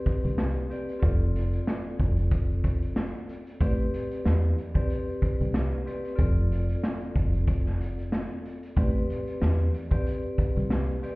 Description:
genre	hip hop, boom-bap hip-hop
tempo	93 BPM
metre	4/4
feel	swing 56% on 16ths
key	A minor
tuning	A4 = 440 Hz
part	vibraphone with medium hard mallets	accompaniment	0.0-11.2 s	C4 to D5	-33 LUFS	left 1 dB	cassette tape, high-pass filter, low-pass filter
part	raw garage drum kit	drums	0.1-11.2 s	hi-hat, kick drum, snare drum	-28 LUFS	equal	none
part	deep dub fingered electric bass	bass	0.2-10.8 s	F1 to E2	-25 LUFS	equal	none
room	small room ambience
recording	heard muffled through a wall, stone room reverb, EQ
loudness	-24 LUFS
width	side -23 dB against mid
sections	0.0-11.2 A section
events	none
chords	0.0 Am11 (rootless); 1.0 F6; 3.6 Am11 (rootless); 6.2 F6; 8.8 Am11 (rootless)

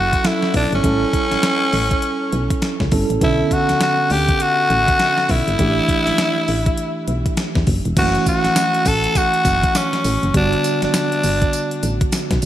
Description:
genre	R&B, new jack swing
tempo	101 BPM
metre	4/4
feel	swing 61% on 16ths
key	unclear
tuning	A4 = 439 Hz
part	growling tenor saxophone	melody	0.0-12.0 s	C#4 to A4	-18 LUFS	left 1 dB	shimmer reverb
part	mellow tine electric piano	accompaniment	0.0-12.5 s	D3 to A4	-22 LUFS	right 3 dB	fast stereo tremolo
part	solid FM bass	bass	0.0-12.5 s	E1 to E2	-21 LUFS	equal	none
part	clean 12-bit digital drum machine	drums	0.1-12.5 s	crash cymbal, hi-hat, kick drum, snare drum, tambourine	-21 LUFS	equal	overdrive
room	wet plate reverb, RT60 1.3 s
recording	bright 1980s-style digital production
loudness	-15 LUFS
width	side -12 dB against mid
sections	0.0-8.0 A section; 8.0-12.5 B section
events	none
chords	0.0 F#m7; 0.8 A7; 3.2 Bm9; 5.6 A7sus4; 8.0 F#m7; 10.3 Gmaj7

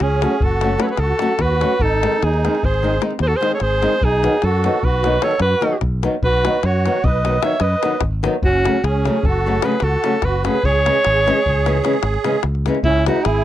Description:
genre	balkan folk, Balkan wedding band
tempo	299 BPM (eighths)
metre	11/8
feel	straight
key	C# minor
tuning	A4 = 440 Hz
part	clear alto saxophone	melody	0.0-13.4 s	E4 to E5	-19 LUFS	equal	none
part	musette accordion	second line	0.0-13.4 s	C#4 to C#5	-24 LUFS	right 7 dB	none
part	modern bright fingered electric bass	bass	0.0-13.4 s	F#1 to F#2	-20 LUFS	equal	none
part	davul	percussion	0.0-13.4 s	none	-23 LUFS	left 2 dB	none
part	flamenco guitar	accompaniment	0.2-13.2 s	C#3 to F#4	-21 LUFS	left 2 dB	none
room	little or no reverb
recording	dry, close 1970s-style studio recording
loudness	-15 LUFS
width	side -12 dB against mid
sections	0.0-12.8 A section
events	none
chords	0.0 F#m; 1.8 G#; 4.0 B; 8.4 F#m; 10.6 C#m

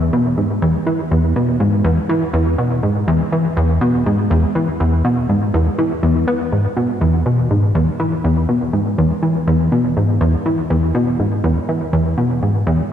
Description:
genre	ambient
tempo	122 BPM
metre	4/4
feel	straight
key	E major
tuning	A4 = 440 Hz
part	plucky analog bass	solo	0.0-12.8 s	E2 to B3	-14 LUFS	equal	lush chorus, analog delay
room	wet lush hall reverb, RT60 3.1 s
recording	dreamy mix soaked in reverb, cassette tape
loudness	-14 LUFS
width	side -9 dB against mid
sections	0.0-12.9 A section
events	none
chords	none

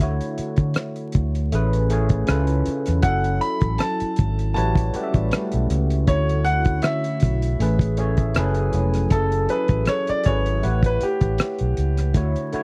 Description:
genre	R&B, neo-soul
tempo	79 BPM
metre	4/4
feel	swing 56% on 16ths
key	F# minor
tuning	A4 = 440 Hz
part	overdriven tine electric piano	accompaniment	0.0-12.6 s	A2 to F#5	-29 LUFS	equal	phaser
part	vintage muted fingered electric bass	bass	0.0-12.6 s	E#1 to D3	-24 LUFS	equal	none
part	cloth-damped thuddy drum kit	drums	0.0-12.6 s	hi-hat, kick drum, rim click	-23 LUFS	equal	none
part	clear baby grand piano	melody	3.0-12.1 s	G4 to B5	-28 LUFS	equal	none
part	hollow soft pad	sustained chords	3.0-9.1 s	D3 to G#5	-33 LUFS	equal	chorus
room	little or no reverb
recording	dry, close 1970s-style studio recording, vinyl crackle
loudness	-21 LUFS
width	mono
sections	0.0-9.1 A section; 9.1-12.6 B section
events	grand piano solo 9.1-12.6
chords	0.0 Dmaj9; 1.5 Amaj9; 2.3 C#7alt; 3.0 F#m7; 4.5 A13; 6.1 Dmaj9; 7.6 Amaj9; 8.3 F#m11; 9.1 F#m7; 10.6 A13

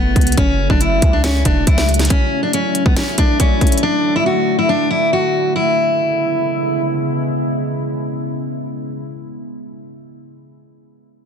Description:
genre	hip hop, trap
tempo	139 BPM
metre	4/4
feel	half-time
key	C# phrygian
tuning	A4 = 442 Hz
part	picked steel-string acoustic guitar	melody	0.0-6.8 s	B3 to F#4	-17 LUFS	equal	low-pass filter, tape echo
part	deep dark ambient pad	sustained chords	0.0-8.8 s	C#3 to E4	-21 LUFS	left 1 dB	chorus, built-in reverb
part	hard-hitting 808-style bass	bass	0.0-2.1 s	E1 to C#2	-17 LUFS	equal	none
part	trap drum kit	drums	0.2-3.8 s	hi-hat, kick drum, snare drum	-15 LUFS	equal	none
room	light reverb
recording	dense, heavily limited modern master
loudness	-14 LUFS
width	side -7 dB against mid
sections	0.0-5.6 A section; 5.6-9.0 B section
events	none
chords	0.0 F#m7; 2.1 Dadd9; 5.6 C#m7

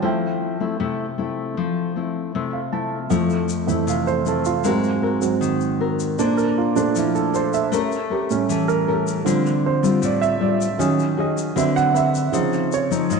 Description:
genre	bossa nova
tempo	156 BPM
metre	4/4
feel	straight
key	F major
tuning	A4 = 440 Hz
part	nylon-string guitar	accompaniment	0.0-13.2 s	Ab2 to C5	-22 LUFS	left 7 dB	none
part	warm concert grand piano	accompaniment	0.0-13.2 s	F2 to A5	-21 LUFS	right 8 dB	none
part	tube shaker	percussion	3.1-13.2 s	none	-36 LUFS	left 11 dB	none
room	wet echo chamber reverb, RT60 2.1 s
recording	1960s-style stereo with parts hard left and right, nothing above 10.8 kHz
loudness	-18 LUFS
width	side -4 dB against mid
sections	0.0-3.1 A section; 3.1-13.2 B section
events	grand piano fill 2.3-3.1; grand piano solo 3.1-13.2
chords	0.0 Fmaj7; 4.6 Ab9; 6.2 Bbmaj9; 7.7 A7b9; 9.3 Dm7; 10.8 Ebm7; 11.6 D6; 12.3 Dbmaj9

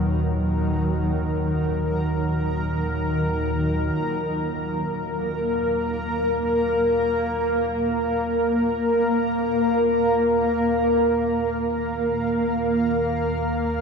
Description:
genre	dark ambient drone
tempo	free time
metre	none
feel	none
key	Eb minor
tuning	A4 = 441 Hz
part	granular cloud pad	sustained chords	0.0-13.8 s	D#3 to F5	-21 LUFS	equal	built-in reverb
part	deep rumbling drone	drone	0.0-13.8 s	Eb2 to Bb2	-30 LUFS	equal	built-in reverb
part	bronze singing bowl	texture	3.9-13.8 s	F4	-49 LUFS	right 5 dB	none
room	wet cathedral reverb, RT60 7.1 s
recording	none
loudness	-20 LUFS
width	side -5 dB against mid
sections	0.0-4.0 A section; 4.0-13.8 B section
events	fade-in on synth drone 4.0-13.8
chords	0.0 B/D# (rootless); 4.0 Ebm

